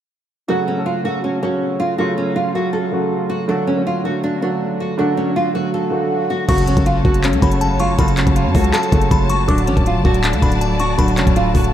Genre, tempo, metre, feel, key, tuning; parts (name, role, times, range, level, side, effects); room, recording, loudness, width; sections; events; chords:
hip hop, trap; 160 BPM; 4/4; half-time; F# harmonic minor; A4 = 439 Hz
nylon-string guitar; melody; 0.5-11.7 s; C#4 to A4; -21 LUFS; equal; lush chorus, analog delay
warm baby grand piano; accompaniment; 0.5-11.7 s; C#3 to A4; -20 LUFS; right 2 dB; wide subtle chorus
swell and impact; sound effects; 5.7-8.0 s; -30 LUFS; equal
delicate synth tine bell; second line; 6.5-11.7 s; A5 to D6; -25 LUFS; left 3 dB; chorus, analog delay
warm symphonic string section; sustained chords; 6.5-11.7 s; F#3 to A5; -25 LUFS; left 2 dB
growling 808-style bass; bass; 6.5-11.7 s; D1 to F#2; -18 LUFS; equal
trap drum kit; drums; 6.5-11.7 s; crash cymbal, handclaps, hi-hat, kick drum; -18 LUFS; equal
moderate cathedral reverb, RT60 5.6 s; dreamy mix soaked in reverb; -15 LUFS; side -10 dB against mid
0.5-6.5 A section; 6.5-11.7 B section
swell 5.7-6.5; impact 6.5-8.0
0.5 F#m; 3.5 D; 6.5 F#m; 9.5 D